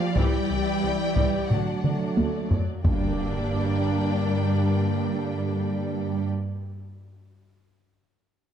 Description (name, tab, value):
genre	cinematic, epic orchestral film score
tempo	91 BPM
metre	4/4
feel	straight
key	G minor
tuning	A4 = 440 Hz
part	rich symphonic violin section	melody	0.0-6.2 s	F5 to G5	-38 LUFS	left 5 dB	none
part	warm symphonic violin section	second line	0.0-6.3 s	D4 to D5	-34 LUFS	left 4 dB	none
part	warm symphonic viola section	accompaniment	0.0-6.2 s	D3 to F4	-35 LUFS	right 1 dB	none
part	mellow French horn section	sustained chords	0.0-6.2 s	F3 to G3	-32 LUFS	left 7 dB	none
part	warm symphonic cello section	bass	0.0-6.2 s	F3 to G3	-32 LUFS	right 5 dB	none
part	clear trombone section	sustained chords	0.2-6.2 s	D3 to Bb3	-32 LUFS	right 4 dB	none
part	rich symphonic double bass section	bass	0.2-6.2 s	C2 to G2	-29 LUFS	right 2 dB	none
part	taiko ensemble	drums	0.2-3.0 s	none	-25 LUFS	equal	none
part	impact	sound effects	2.8-7.0 s	none	-32 LUFS	equal	none
room	moderate scoring stage reverb, RT60 1.6 s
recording	dark, warm production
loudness	-23 LUFS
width	side -9 dB against mid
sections	0.0-2.9 A section; 2.9-5.5 B section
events	drum fill 1.8-2.9; impact 2.9-5.5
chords	0.2 Cadd9; 1.5 D; 2.9 Gm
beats	| 0.16 0.83 1.50 2.18 | 2.85 3.51 4.17 4.83